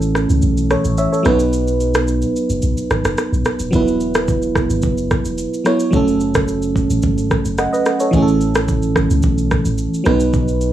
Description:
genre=afrobeats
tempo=109 BPM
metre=4/4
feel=straight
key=unclear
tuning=A4 = 439 Hz
part: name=FM electric piano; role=accompaniment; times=0.0-10.7 s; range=E3 to F#5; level=-17 LUFS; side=right 1 dB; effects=chorus
part: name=punchy sub bass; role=bass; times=0.0-10.7 s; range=D#1 to C#2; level=-20 LUFS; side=equal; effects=none
part: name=afro-pop drum kit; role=drums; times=0.0-10.7 s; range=kick drum, rim click, shaker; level=-20 LUFS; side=right 1 dB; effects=none
room=light reverb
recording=dry, gritty hardware recording, transformer saturation, cassette tape, studio ambience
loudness=-14 LUFS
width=side -12 dB against mid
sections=0.0-10.7 A section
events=break 0.0-3.7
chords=0.0 A; 1.3 B; 3.7 Esus2; 5.9 F#m; 8.1 A; 10.1 B

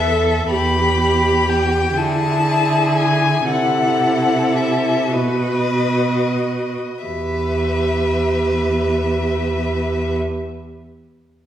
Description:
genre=classical, slow romantic movement for string quartet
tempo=29-42 BPM (dotted quarters)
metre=6/8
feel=rubato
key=E minor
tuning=A4 = 440 Hz
part: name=rich violin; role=melody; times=0.0-10.2 s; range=D#5 to B5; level=-21 LUFS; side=left 5 dB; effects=none
part: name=clear violin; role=second line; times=0.0-10.2 s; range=G4 to B4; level=-26 LUFS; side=left 1 dB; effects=none
part: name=rich viola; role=accompaniment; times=0.0-10.2 s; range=E4 to A4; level=-21 LUFS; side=right 2 dB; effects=none
part: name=rich cello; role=bass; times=0.0-10.2 s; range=E2 to D3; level=-21 LUFS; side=right 2 dB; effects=none
room=wet recital hall reverb, RT60 1.6 s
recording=heard from further back in the room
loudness=-16 LUFS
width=side -10 dB against mid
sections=0.0-7.1 A section; 7.1-10.6 B section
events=slowing down 0.0-7.1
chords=0.0 A5/E; 0.5 Em; 2.0 E7/D; 3.5 Am/C; 5.1 B; 7.1 Em

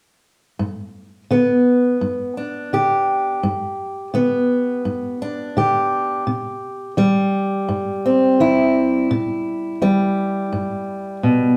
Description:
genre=folk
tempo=85 BPM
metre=4/4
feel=straight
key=G major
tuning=A4 = 440 Hz
part: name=fingerpicked steel-string acoustic guitar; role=accompaniment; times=0.6-11.6 s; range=G2 to G4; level=-19 LUFS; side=equal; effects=none
room=moderate large studio reverb, RT60 1.1 s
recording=band playing live in one room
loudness=-19 LUFS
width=mono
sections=0.6-11.6 A section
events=none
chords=0.6 G; 6.3 C

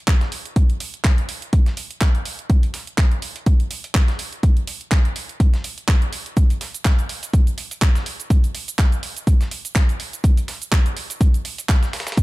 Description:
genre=house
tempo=124 BPM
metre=4/4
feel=swing 56% on 16ths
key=none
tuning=none
part: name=dusty soul sampler-style drum kit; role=drums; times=0.1-12.2 s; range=hi-hat, snare drum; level=-34 LUFS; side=equal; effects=sidechain pumping on hats, high-pass filter on hats, high-pass filter on snare
part: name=electronic kick drum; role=drums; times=0.1-12.2 s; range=none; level=-16 LUFS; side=equal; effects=none
part: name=house drum kit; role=drums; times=0.1-12.2 s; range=handclaps, hi-hat, shaker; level=-27 LUFS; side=right 2 dB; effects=none
room=little or no reverb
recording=dark, warm production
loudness=-17 LUFS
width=side -19 dB against mid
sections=0.0-12.2 A section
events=none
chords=none

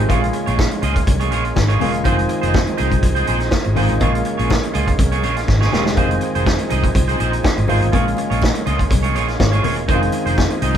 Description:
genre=disco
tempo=122 BPM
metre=4/4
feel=straight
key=unclear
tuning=A4 = 440 Hz
part: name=warm baby grand piano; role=accompaniment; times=0.0-10.8 s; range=C3 to Db5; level=-24 LUFS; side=left 2 dB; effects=none
part: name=overdriven tonewheel organ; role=sustained chords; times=0.0-10.8 s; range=F3 to Ab4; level=-26 LUFS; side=right 2 dB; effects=chorus vibrato
part: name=vintage muted fingered electric bass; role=bass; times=0.0-10.8 s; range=E1 to Db2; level=-20 LUFS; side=equal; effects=none
part: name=electric guitar at the edge of break-up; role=accompaniment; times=0.1-10.8 s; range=Eb4 to Eb5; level=-23 LUFS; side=right 4 dB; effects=none
part: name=vintage drum kit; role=drums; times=0.1-10.8 s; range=hi-hat, kick drum, snare drum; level=-20 LUFS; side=equal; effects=none
part: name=congas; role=percussion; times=0.1-10.8 s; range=none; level=-29 LUFS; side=left 5 dB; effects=none
room=moderate studio ambience, RT60 0.5 s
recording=band playing live in one room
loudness=-15 LUFS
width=side -9 dB against mid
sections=0.0-10.8 A section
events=drum fill 5.5-6.0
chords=0.1 Bbm7; 2.1 Fm7; 4.0 Bbm7; 6.0 Fm7; 7.9 Bbm7; 9.9 Fm7

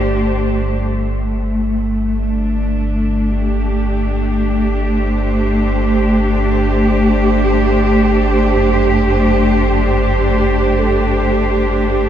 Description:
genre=dark ambient drone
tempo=free time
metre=none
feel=none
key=unclear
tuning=A4 = 440 Hz
part: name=muted symphonic cello section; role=sustained chords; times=0.0-12.1 s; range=A3 to C5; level=-15 LUFS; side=right 1 dB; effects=none
part: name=deep rumbling drone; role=drone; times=0.0-12.1 s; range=G1 to G2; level=-18 LUFS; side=equal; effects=built-in reverb, wide subtle chorus
part: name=gamelan-type bossed gongs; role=arpeggios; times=8.6-12.1 s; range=F#2 to A4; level=-25 LUFS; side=equal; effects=none
room=wet cathedral reverb, RT60 6.0 s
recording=none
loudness=-13 LUFS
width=side -10 dB against mid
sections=0.8-12.1 A section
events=none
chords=0.0 Gsus2

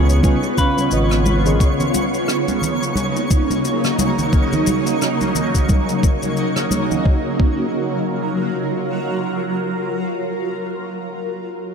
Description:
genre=sunset chillout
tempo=88 BPM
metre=4/4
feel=swing 58% on 16ths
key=F# major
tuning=A4 = 440 Hz
part: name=clean electric guitar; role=melody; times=0.0-1.6 s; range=G#4 to B4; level=-27 LUFS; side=left 4 dB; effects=ping-pong delay
part: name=mellow FM electric piano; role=accompaniment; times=0.0-1.9 s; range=C#3 to G#5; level=-22 LUFS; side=right 1 dB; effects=chorus, auto-pan, ping-pong delay
part: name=shimmering ambient pad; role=sustained chords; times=0.0-10.5 s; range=C#3 to A#4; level=-20 LUFS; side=right 1 dB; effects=chorus, built-in reverb, phaser
part: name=overdriven fingered electric bass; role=bass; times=0.0-1.5 s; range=G#1 to C#2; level=-16 LUFS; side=equal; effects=tube saturation
part: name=downlifter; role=sound effects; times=0.1-1.6 s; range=none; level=barely audible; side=none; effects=none
part: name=twinkling granular texture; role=texture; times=0.0-7.1 s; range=C#5 to C#6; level=-28 LUFS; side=equal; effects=built-in reverb
part: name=shaker and rim click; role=drums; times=0.1-7.0 s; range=none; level=-27 LUFS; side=left 2 dB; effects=none
part: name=electronic kick drum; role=drums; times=0.2-7.6 s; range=none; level=-16 LUFS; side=equal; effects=none
part: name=congas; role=percussion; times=0.2-7.0 s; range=none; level=-25 LUFS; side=right 1 dB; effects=none
room=moderate lush hall reverb, RT60 2.9 s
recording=none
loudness=-16 LUFS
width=side -6 dB against mid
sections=0.0-7.1 A section; 7.1-9.8 B section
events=none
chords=0.0 C#7; 1.6 F#6/C#; 7.1 F#maj7

